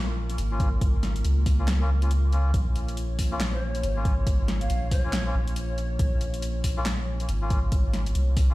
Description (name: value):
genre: deep dubstep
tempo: 139 BPM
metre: 4/4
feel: swing 60% on 16ths, half-time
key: Bb minor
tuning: A4 = 435 Hz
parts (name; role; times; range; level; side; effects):
- dark analog pad; sustained chords; 0.0-8.5 s; Bb3 to Db5; -37 LUFS; right 1 dB; chorus, vintage 12-bit sampler grit
- soft dub sub bass; bass; 0.0-8.5 s; Ab1 to Db2; -25 LUFS; equal; none
- deep house drum kit; drums; 0.3-8.5 s; handclaps, hi-hat, snare drum; -34 LUFS; left 1 dB; overdrive
- melodica; stabs; 0.5-8.5 s; Bb3 to F4; -37 LUFS; left 2 dB; dub echo
- electronic kick drum; drums; 0.6-8.5 s; none; -24 LUFS; equal; overdrive
- breathy ney; melody; 3.5-5.5 s; Db5 to F5; -38 LUFS; right 1 dB; dub echo
room: little or no reverb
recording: played on a big sound system in a bare room, large studio reverb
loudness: -23 LUFS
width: side -18 dB against mid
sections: 0.0-8.5 A section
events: none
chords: 0.0 Bbm